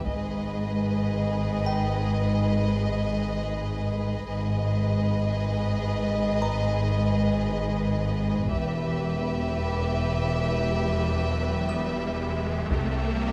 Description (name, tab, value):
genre	cinematic, suspense film score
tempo	57 BPM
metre	4/4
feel	straight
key	G# harmonic minor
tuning	A4 = 436 Hz
part	warm chamber violin section	melody	0.0-13.3 s	D#5 to E5	-35 LUFS	equal	none
part	warm symphonic violin section	second line	0.0-13.3 s	G4 to B4	-36 LUFS	equal	none
part	rich chamber double bass section	bass	0.0-13.3 s	E1 to C2	-31 LUFS	equal	none
part	warm symphonic cello section	bass	0.0-13.3 s	C2 to G#2	-31 LUFS	equal	none
part	taiko ensemble	drums	0.1-2.1, 8.5-13.3 s	none	-35 LUFS	equal	none
part	music box	texture	1.7-13.3 s	B4 to D#6	-39 LUFS	equal	none
part	riser	sound effects	11.2-13.3 s	none	-38 LUFS	equal	none
room	light reverb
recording	close, detailed microphones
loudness	-26 LUFS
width	mono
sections	0.0-13.3 A section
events	riser 11.2-13.3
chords	0.1 G#m; 8.5 Em; 12.7 C7